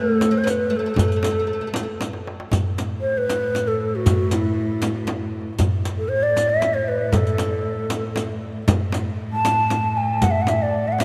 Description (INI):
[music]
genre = Arabic maqam ensemble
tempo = 117 BPM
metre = 3/4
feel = straight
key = A maqam rast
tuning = A4 = 439 Hz
[part]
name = breathy mellow low ney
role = melody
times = 0.0-11.0 s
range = E4 to A5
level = -25 LUFS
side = equal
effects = tape echo
[part]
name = oud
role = second line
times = 0.0-1.9 s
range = A3 to C4+50c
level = -28 LUFS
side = equal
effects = none
[part]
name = darbuka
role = percussion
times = 0.2-11.0 s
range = none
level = -28 LUFS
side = equal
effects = none
[part]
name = frame drum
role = percussion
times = 0.2-11.0 s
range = none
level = -29 LUFS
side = equal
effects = none
[part]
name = riq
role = percussion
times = 0.2-11.0 s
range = none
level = -36 LUFS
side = equal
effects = none
[part]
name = warm cello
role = drone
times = 2.5-11.0 s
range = A2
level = -29 LUFS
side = equal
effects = none
[sound]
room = wet cathedral reverb, RT60 5.4 s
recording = in a vast, echoing space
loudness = -22 LUFS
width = mono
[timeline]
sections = 0.0-2.5 A section; 2.5-11.0 B section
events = drum fill 2.0-2.5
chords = none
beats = 0.47 | 0.98 1.50 2.01 | 2.52 3.04 3.55 | 4.06 4.58 5.09 | 5.60 6.12 6.63 | 7.14 7.66 8.17 | 8.68 9.20 9.71 | 10.22 10.74